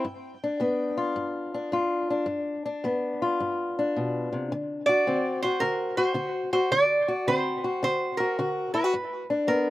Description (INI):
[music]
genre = acoustic country blues, solo or duo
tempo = 108 BPM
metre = 4/4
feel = swing 66% on 8ths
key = unclear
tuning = A4 = 440 Hz
[part]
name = lap resonator guitar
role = melody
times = 0.0-1.1, 4.9-9.7 s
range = Bb4 to G5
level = -25 LUFS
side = right 2 dB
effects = slapback echo
[part]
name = fingerpicked old ladder-braced acoustic guitar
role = accompaniment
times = 0.0-9.7 s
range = G2 to F#4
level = -26 LUFS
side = left 2 dB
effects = slapback echo
[sound]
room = little or no reverb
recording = recorded outdoors, with no room sound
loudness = -24 LUFS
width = side -16 dB against mid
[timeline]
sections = 0.0-9.7 A section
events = none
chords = 0.1 G7; 4.5 D7; 8.9 G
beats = | 0.06 0.61 1.17 1.73 | 2.28 2.83 3.39 3.94 | 4.50 5.05 5.61 6.16 | 6.72 7.27 7.83 8.38 | 8.94 9.49